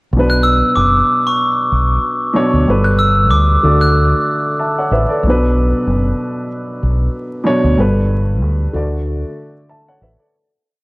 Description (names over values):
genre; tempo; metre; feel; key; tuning
hip hop, boom-bap hip-hop; 94 BPM; 4/4; swing 55% on 16ths; B minor; A4 = 440 Hz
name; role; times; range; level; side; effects
deep dub fingered electric bass; bass; 0.1-10.2 s; F#1 to D2; -14 LUFS; equal; none
dark baby grand piano; accompaniment; 0.2-10.5 s; G2 to A5; -17 LUFS; equal; high-pass filter, low-pass filter, cassette tape
glockenspiel with hard plastic mallets; melody; 0.3-4.1 s; C#6 to F#6; -16 LUFS; equal; high-pass filter, low-pass filter, cassette tape, tape echo
room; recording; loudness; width
light reverb, small room ambience; home recording on cassette, vinyl crackle, lossy compression artefacts; -12 LUFS; side -23 dB against mid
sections
0.1-10.3 hook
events
fade-out 7.8-10.3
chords
0.1 Bm; 2.7 Gadd9; 3.6 D; 5.2 Bm; 7.8 Gadd9; 8.7 D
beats
| 0.12 0.76 1.40 2.04 | 2.68 3.31 3.95 4.59 | 5.23 5.87 6.51 7.14 | 7.78 8.42 9.06 9.70